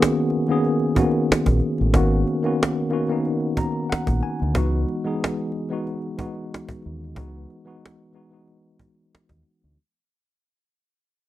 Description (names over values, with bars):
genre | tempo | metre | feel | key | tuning
R&B, neo-soul | 92 BPM | 4/4 | swing 54% on 16ths | unclear | A4 = 440 Hz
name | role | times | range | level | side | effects
tine electric piano | accompaniment | 0.0-9.8 s | D#3 to A#5 | -22 LUFS | left 1 dB | overdrive, fast stereo tremolo
cajon | drums | 0.0-9.7 s | none | -23 LUFS | equal | none
deep dub fingered electric bass | bass | 1.3-9.8 s | G#1 to D#2 | -22 LUFS | equal | none
room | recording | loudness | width
light reverb | dark, warm production | -20 LUFS | side -14 dB against mid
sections
0.0-9.8 A section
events
fade-out 0.0-9.8; tine electric piano fill 3.2-4.5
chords
0.0 G#m11; 4.5 C#m11 (rootless)